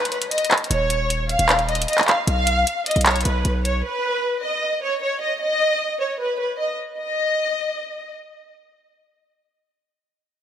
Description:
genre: hip hop, trap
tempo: 153 BPM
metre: 4/4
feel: half-time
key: unclear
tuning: A4 = 440 Hz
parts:
  - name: dark studio violin section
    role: melody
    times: 0.0-8.1 s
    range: Cb5 to F5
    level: -21 LUFS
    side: equal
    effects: none
  - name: trap drum kit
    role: drums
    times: 0.1-3.7 s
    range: handclaps, hi-hat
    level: -20 LUFS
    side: equal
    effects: none
  - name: hard-hitting 808-style bass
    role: bass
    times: 0.7-3.8 s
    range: Eb1 to B1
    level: -22 LUFS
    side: equal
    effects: none
room: moderate plate reverb, RT60 2.2 s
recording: bright 1980s-style digital production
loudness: -19 LUFS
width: side -9 dB against mid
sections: 0.7-7.0 A section; 7.0-10.1 B section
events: break 0.0-0.7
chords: 0.0 N.C.; 0.7 Dbadd9/Eb; 2.3 Bsus2; 3.8 N.C.

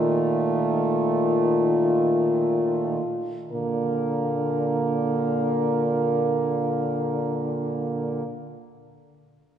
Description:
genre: classical, lyrical piece for horn quartet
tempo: free time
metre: none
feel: none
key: Bb major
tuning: A4 = 440 Hz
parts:
  - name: mellow French horn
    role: melody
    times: 0.0-8.2 s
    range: F4 to Bb4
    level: -26 LUFS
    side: left 2 dB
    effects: none
  - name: clear French horn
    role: second line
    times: 0.0-8.2 s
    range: A3 to Bb3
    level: -28 LUFS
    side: right 5 dB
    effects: none
  - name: warm French horn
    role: accompaniment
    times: 0.0-8.2 s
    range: D3 to Eb3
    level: -28 LUFS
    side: equal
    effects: none
  - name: warm French horn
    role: bass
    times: 0.0-8.2 s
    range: Bb2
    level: -29 LUFS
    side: right 2 dB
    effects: none
room: wet concert hall reverb, RT60 2.3 s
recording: recorded in a church or concert hall, nothing above 10.8 kHz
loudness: -21 LUFS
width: side -9 dB against mid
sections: 0.0-3.5 A section; 3.5-9.1 B section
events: slowing down 0.0-3.5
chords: 0.0 F7/Bb; 3.5 Bb

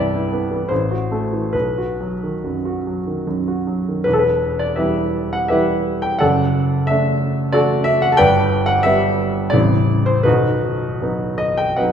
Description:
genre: classical, romantic character piece for solo piano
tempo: 66-93 BPM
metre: 3/4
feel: rubato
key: E minor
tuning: A4 = 436 Hz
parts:
  - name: clear baby grand piano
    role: solo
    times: 0.0-11.9 s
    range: A0 to A5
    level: -16 LUFS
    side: equal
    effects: none
room: wet recital hall reverb, RT60 1.5 s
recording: heard from further back in the room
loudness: -16 LUFS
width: side -8 dB against mid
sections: 0.0-4.1 A section; 4.1-11.9 B section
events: none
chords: 0.0 Cmaj7; 0.7 F#m7b5/A; 1.5 B; 4.1 Em; 6.2 D/F#; 8.2 G; 9.5 Am7; 10.3 B

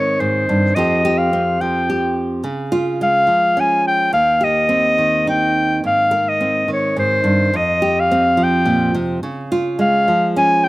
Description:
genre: acoustic folk-pop ballad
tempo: 106 BPM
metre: 3/4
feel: straight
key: Ab major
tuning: A4 = 440 Hz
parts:
  - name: bright clarinet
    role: melody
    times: 0.0-10.7 s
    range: C5 to Ab5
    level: -15 LUFS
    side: left 1 dB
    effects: slapback echo
  - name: nylon-string guitar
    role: accompaniment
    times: 0.0-10.7 s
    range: Eb2 to Bb4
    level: -18 LUFS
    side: right 1 dB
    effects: none
room: light reverb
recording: recorded outdoors, with no room sound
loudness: -14 LUFS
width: side -19 dB against mid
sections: 0.0-10.7 A section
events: none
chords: 0.0 Abadd9; 0.7 Fsus2; 2.4 Db; 4.1 Eb6; 5.8 Abadd9; 7.5 Fsus2; 9.2 Db

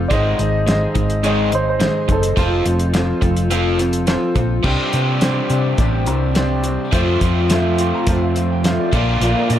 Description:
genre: folk rock and heartland rock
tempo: 105 BPM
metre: 4/4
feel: straight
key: F mixolydian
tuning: A4 = 440 Hz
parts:
  - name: clear concert grand piano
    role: accompaniment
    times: 0.0-9.6 s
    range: D4 to C6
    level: -26 LUFS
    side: right 2 dB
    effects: dub echo
  - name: picked old ladder-braced acoustic guitar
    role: accompaniment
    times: 0.0-9.6 s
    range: F2 to A4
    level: -23 LUFS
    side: left 2 dB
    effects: dub echo
  - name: overdriven electric guitar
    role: riff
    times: 0.0-9.6 s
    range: F2 to G4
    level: -21 LUFS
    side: equal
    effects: none
  - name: hollow-body short-scale fingered electric bass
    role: bass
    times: 0.0-9.6 s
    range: F1 to C3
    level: -19 LUFS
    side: equal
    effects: none
  - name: warm upright piano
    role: second line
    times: 0.1-2.4 s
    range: A4 to Eb5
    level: -24 LUFS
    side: right 2 dB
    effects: dub echo
  - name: cloth-damped thuddy drum kit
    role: drums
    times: 0.1-9.6 s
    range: crash cymbal, hi-hat, kick drum, snare drum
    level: -21 LUFS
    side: equal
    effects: none
  - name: mellow tonewheel organ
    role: sustained chords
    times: 9.2-9.6 s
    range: F4 to Bb5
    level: -25 LUFS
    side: left 1 dB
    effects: slow rotary speaker, chorus vibrato
room: light reverb, small room reverb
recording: echo-heavy mix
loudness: -15 LUFS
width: side -11 dB against mid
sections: 0.0-4.6 A section; 4.6-9.6 B section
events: grand piano fill 7.5-9.2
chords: 0.1 Ab; 2.4 F; 4.6 Csus2; 6.9 F; 8.9 Bb

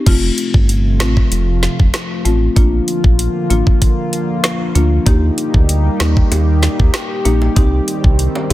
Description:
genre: dancehall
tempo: 96 BPM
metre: 4/4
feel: straight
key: unclear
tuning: A4 = 440 Hz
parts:
  - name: marimba with medium mallets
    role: accompaniment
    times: 0.1-8.5 s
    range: A3 to G4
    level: -21 LUFS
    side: left 3 dB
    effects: none
  - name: warm analog pad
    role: sustained chords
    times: 0.1-8.5 s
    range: C3 to G4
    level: -21 LUFS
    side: equal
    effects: chorus, sidechain pumping
  - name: round analog bass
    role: bass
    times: 0.1-8.5 s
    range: F1 to Eb2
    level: -14 LUFS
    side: equal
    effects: none
  - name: island pop drum kit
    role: drums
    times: 0.1-8.5 s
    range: crash cymbal, hi-hat, kick drum, rim click, snare drum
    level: -14 LUFS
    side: equal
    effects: none
  - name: bongos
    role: percussion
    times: 5.1-8.5 s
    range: none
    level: -26 LUFS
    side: right 2 dB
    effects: none
room: digital ambience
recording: dense, heavily limited modern master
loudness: -12 LUFS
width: side -16 dB against mid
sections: 0.1-8.5 A section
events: none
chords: 0.1 F; 2.6 Bb; 5.1 Eb; 7.6 Cm

